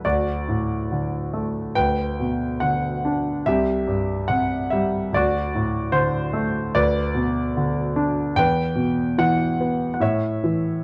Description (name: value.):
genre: classical, lyrical solo piano.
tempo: 72 BPM.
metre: 4/4.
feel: rubato.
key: D major.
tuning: A4 = 436 Hz.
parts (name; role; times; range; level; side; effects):
clear concert grand piano; solo; 0.0-10.8 s; C2 to G5; -22 LUFS; equal; none.
room: light reverb.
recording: close, detailed microphones.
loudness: -23 LUFS.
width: mono.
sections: 0.0-10.8 A section.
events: none.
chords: 0.0 D; 1.8 G/D; 3.5 C; 5.1 D7; 6.7 Bm/D; 8.4 Em; 10.0 A.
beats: | 0.04 0.91 1.76 2.61 | 3.45 4.29 5.13 5.93 | 6.74 7.56 8.37 9.19 | 10.01 10.83.